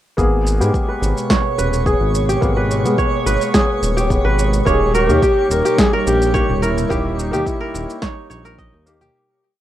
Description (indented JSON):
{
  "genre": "organic downtempo",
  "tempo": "107 BPM",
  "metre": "4/4",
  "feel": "straight",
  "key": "G# harmonic minor",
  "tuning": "A4 = 440 Hz",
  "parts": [
    { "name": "felt-muted upright piano", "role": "accompaniment", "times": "0.2-9.2 s", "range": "G#3 to D#5", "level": "-23 LUFS", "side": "left 2 dB", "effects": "sidechain pumping, ping-pong delay" },
    { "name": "ethereal airy pad", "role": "sustained chords", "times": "1.0-9.1 s", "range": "B2 to G4", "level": "-27 LUFS", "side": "equal", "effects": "ensemble chorus, built-in reverb, sidechain pumping" },
    { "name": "kora", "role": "arpeggios", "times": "0.2-9.6 s", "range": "G4 to D#5", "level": "-21 LUFS", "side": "right 2 dB", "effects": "low-pass filter, ping-pong delay" },
    { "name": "smooth synth bass", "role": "bass", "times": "0.2-9.1 s", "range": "D#1 to G#2", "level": "-19 LUFS", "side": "equal", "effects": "none" },
    { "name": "electronic kick drum", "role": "drums", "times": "0.2-8.7 s", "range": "none", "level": "-20 LUFS", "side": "equal", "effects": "overdrive" },
    { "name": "electronic shaker and snare drum", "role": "drums", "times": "0.2-9.1 s", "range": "none", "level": "-21 LUFS", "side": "equal", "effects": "overdrive" },
    { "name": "twinkling granular texture", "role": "texture", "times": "0.7-9.2 s", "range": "C#5", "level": "-27 LUFS", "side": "right 2 dB", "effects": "built-in reverb" },
    { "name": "warm duduk", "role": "melody", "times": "4.7-8.9 s", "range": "D#4 to A#4", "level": "-21 LUFS", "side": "equal", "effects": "ping-pong delay" },
    { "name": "darbuka", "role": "percussion", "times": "5.1-9.1 s", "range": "none", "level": "-31 LUFS", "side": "left 2 dB", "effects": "none" }
  ],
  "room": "moderate small room reverb, RT60 0.5 s",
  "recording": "rough home demo mix",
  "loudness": "-14 LUFS",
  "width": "side -12 dB against mid",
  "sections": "0.2-9.2 groove",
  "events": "filter sweep on kora 0.2-9.2; fade-out 6.2-9.2",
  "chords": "0.2 G#madd9; 4.7 D#"
}